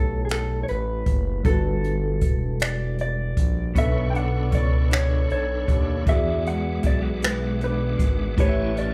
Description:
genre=slow six-eight R&B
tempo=52 BPM (dotted quarters)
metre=6/8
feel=straight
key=B minor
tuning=A4 = 440 Hz
part: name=mellow electric guitar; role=melody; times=0.0-8.9 s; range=G#4 to G5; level=-32 LUFS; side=equal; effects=none
part: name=tine electric piano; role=accompaniment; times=0.0-8.9 s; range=B2 to E5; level=-32 LUFS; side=equal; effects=overdrive
part: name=smooth synth bass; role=bass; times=0.0-8.9 s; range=E1 to E2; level=-28 LUFS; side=equal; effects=none
part: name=jazz brush drum kit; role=drums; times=0.3-8.9 s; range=finger snaps, hi-hat, kick drum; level=-26 LUFS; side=equal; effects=none
part: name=electric guitar at the edge of break-up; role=second line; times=3.7-8.9 s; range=E3 to C#5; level=-34 LUFS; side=equal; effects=tremolo
part: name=bright tonewheel organ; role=sustained chords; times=3.8-8.9 s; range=D4 to D6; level=-39 LUFS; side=equal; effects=chorus vibrato, fast rotary speaker
room=moderate large studio reverb, RT60 0.9 s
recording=band playing live in one room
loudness=-23 LUFS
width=mono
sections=0.0-8.9 A section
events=none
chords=0.0 A9; 1.4 Gmaj9; 3.8 Bm9; 6.1 E9; 8.4 A9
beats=0.29 | 1.45 2.60 | 3.76 4.91 | 6.06 7.22 | 8.37

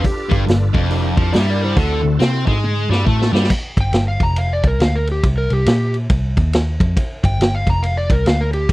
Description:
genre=blues rock power trio and southern rock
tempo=139 BPM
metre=4/4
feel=swing 62% on 8ths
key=unclear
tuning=A4 = 440 Hz
part: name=overdriven slide guitar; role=melody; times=0.0-8.7 s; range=E4 to Bb5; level=-22 LUFS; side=equal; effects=slapback echo
part: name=bright tonewheel organ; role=sustained chords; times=0.0-3.5 s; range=C4 to B4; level=-28 LUFS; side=right 4 dB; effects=slow rotary speaker, overdrive, chorus vibrato
part: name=distorted electric guitar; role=riff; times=0.0-3.5 s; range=F2 to C4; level=-20 LUFS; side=left 1 dB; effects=overdrive
part: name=vintage muted picked electric bass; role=bass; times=0.0-8.7 s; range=F1 to C3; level=-18 LUFS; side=equal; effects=none
part: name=vintage drum kit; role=drums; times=0.0-8.7 s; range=crash cymbal, hi-hat, kick drum, ride cymbal, snare drum, toms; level=-18 LUFS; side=equal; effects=none
room=little or no reverb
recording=dry, close 1970s-style studio recording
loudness=-14 LUFS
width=side -18 dB against mid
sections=0.0-3.5 A section; 3.5-8.7 B section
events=drum fill 2.6-3.5; electric slide guitar solo 3.5-8.7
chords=0.0 G7; 0.9 C9 (rootless); 1.8 D7; 3.5 G5; 5.2 C5; 7.0 G5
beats=| 0.03 0.47 0.90 1.33 | 1.77 2.20 2.63 3.07 | 3.50 3.93 4.37 4.80 | 5.23 5.66 6.10 6.53 | 6.96 7.39 7.83 8.26 | 8.69

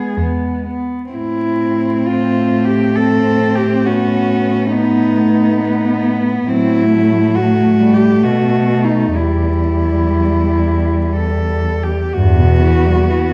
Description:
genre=classical, lyrical piece for cello ensemble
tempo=57-71 BPM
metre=3/4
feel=rubato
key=E minor from 6.5 s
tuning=A4 = 439 Hz
part: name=warm cello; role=melody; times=0.0-13.3 s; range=D#4 to A4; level=-20 LUFS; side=equal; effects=none
part: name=warm cello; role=second line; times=0.0-13.3 s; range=F#3 to C4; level=-24 LUFS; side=equal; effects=none
part: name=rich cello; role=accompaniment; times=0.0-13.3 s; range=G2 to C#4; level=-20 LUFS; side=equal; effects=none
part: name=rich cello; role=bass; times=0.0-12.9 s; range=E2 to B2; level=-18 LUFS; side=equal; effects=none
room=moderate recital hall reverb, RT60 1.5 s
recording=dark, warm production, vinyl crackle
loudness=-15 LUFS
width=mono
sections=0.0-12.2 A section; 12.2-13.3 B section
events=none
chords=0.0 E; 1.1 Am; 3.9 B7/A; 6.5 Am6; 8.2 B5; 9.2 Em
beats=0.17 | 1.13 2.06 2.96 | 3.86 4.74 5.62 | 6.49 7.35 8.24 | 9.18 10.15 11.18 | 12.16 13.09

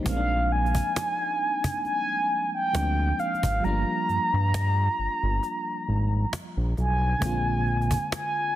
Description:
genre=contemporary R&B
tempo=67 BPM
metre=4/4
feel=swing 54% on 16ths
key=unclear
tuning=A4 = 440 Hz
part: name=FM electric piano with auto-pan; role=accompaniment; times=0.0-8.6 s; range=D3 to F4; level=-33 LUFS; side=right 1 dB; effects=none
part: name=mellow horn-like synth lead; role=melody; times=0.1-8.6 s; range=F5 to Bb5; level=-26 LUFS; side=equal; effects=chorus, digital delay
part: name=smooth synth bass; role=bass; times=0.1-8.0 s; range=G1 to G2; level=-25 LUFS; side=equal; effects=none
part: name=cajon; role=drums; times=0.1-8.3 s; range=none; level=-31 LUFS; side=equal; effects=none
room=light reverb, digital ambience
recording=dense, heavily limited modern master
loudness=-23 LUFS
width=side -13 dB against mid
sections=0.0-7.2 A section; 7.2-8.6 B section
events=kick muted 3.6-7.2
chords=0.1 Bb7; 3.6 Gm7; 7.2 Bb7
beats=| 0.06 0.95 1.85 2.74 | 3.64 4.53 5.43 6.32 | 7.22 8.12

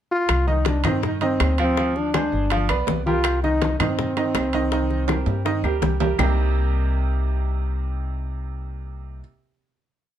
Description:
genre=latin, salsa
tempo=163 BPM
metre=4/4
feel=straight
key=C minor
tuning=A4 = 441 Hz
part: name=clear trombone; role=melody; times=0.1-5.8 s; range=C4 to F4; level=-24 LUFS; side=left 1 dB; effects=none
part: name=upright bass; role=bass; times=0.3-9.2 s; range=G1 to G2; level=-23 LUFS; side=equal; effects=none
part: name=bongos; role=percussion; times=0.3-6.3 s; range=none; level=-31 LUFS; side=left 10 dB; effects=none
part: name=claves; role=percussion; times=0.3-6.3 s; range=none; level=-31 LUFS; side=left 5 dB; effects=none
part: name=congas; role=percussion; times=0.3-6.3 s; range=none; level=-29 LUFS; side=left 4 dB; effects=none
part: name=timbales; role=percussion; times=0.3-6.3 s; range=none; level=-29 LUFS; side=right 9 dB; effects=none
part: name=bright upright piano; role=accompaniment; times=0.5-9.2 s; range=C3 to F5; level=-26 LUFS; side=right 5 dB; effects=none
room=light reverb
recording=dark, warm production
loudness=-19 LUFS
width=side -10 dB against mid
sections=0.0-0.3 pickup bar; 0.3-6.2 A section; 6.2-9.1 final chord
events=drum fill 5.1-6.2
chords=0.3 Cm; 1.8 Dm7b5; 2.5 G7; 3.2 Cm7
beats=| 0.29 0.67 1.03 1.40 | 1.77 2.14 2.51 2.88 | 3.25 3.62 3.98 4.35 | 4.72 5.09 5.46 5.82 | 6.19 6.56 6.93 7.30 | 7.67 8.03 8.40 8.77

